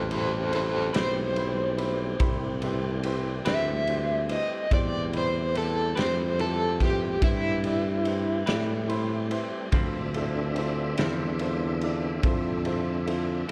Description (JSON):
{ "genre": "slow blues", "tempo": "48 BPM (dotted quarters)", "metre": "12/8", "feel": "straight", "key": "A minor", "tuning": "A4 = 440 Hz", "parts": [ { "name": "overdriven semi-hollow guitar", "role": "melody", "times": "0.0-9.7 s", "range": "E4 to E5", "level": "-31 LUFS", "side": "equal", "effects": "tremolo, plate reverb" }, { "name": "tonewheel organ", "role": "sustained chords", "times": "0.0-13.5 s", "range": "D3 to E5", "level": "-39 LUFS", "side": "equal", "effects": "slow rotary speaker, overdrive, chorus vibrato, plate reverb" }, { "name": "breathy tuba", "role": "bass", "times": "0.0-13.5 s", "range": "A1 to A2", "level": "-32 LUFS", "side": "equal", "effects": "none" }, { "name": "warm grand piano", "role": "accompaniment", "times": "0.1-13.5 s", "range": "E4 to C6", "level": "-38 LUFS", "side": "equal", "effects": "plate reverb" }, { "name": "raw garage drum kit", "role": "drums", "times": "0.1-13.5 s", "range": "kick drum, ride cymbal, snare drum", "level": "-33 LUFS", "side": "equal", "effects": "none" }, { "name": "clean electric guitar", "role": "accompaniment", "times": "0.9-13.5 s", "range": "D3 to B4", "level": "-35 LUFS", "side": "equal", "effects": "tremolo, plate reverb" } ], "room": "light reverb", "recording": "none", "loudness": "-27 LUFS", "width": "mono", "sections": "0.0-13.5 A section", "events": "overdriven electric guitar solo 0.0-13.5; grand piano fill 8.5-9.7", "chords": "0.0 Am9; 9.7 Dm9", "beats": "0.95 2.21 3.46 | 4.71 5.97 7.22 8.48 | 9.73 10.98 12.24 13.49" }